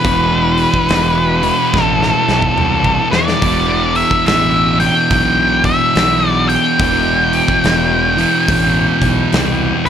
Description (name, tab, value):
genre	stoner and doom metal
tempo	71 BPM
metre	4/4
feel	swing 63% on 8ths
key	E minor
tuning	A4 = 440 Hz
part	octave-fuzz lead guitar	melody	0.0-9.9 s	B4 to G5	-15 LUFS	left 1 dB	distortion
part	thick fuzz guitar	riff	0.0-9.9 s	E2 to E3	-19 LUFS	left 11 dB	distortion
part	thick fuzz guitar	riff	0.0-9.9 s	E2 to E3	-18 LUFS	right 11 dB	distortion
part	fuzz fingered electric bass	bass	0.0-9.9 s	E1 to E2	-20 LUFS	equal	overdrive
part	big rock drum kit	drums	0.0-9.9 s	hi-hat, kick drum, snare drum, toms	-20 LUFS	equal	none
room	light reverb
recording	none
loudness	-11 LUFS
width	side -8 dB against mid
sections	0.0-9.9 A section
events	drum fill 1.7-3.4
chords	0.0 Em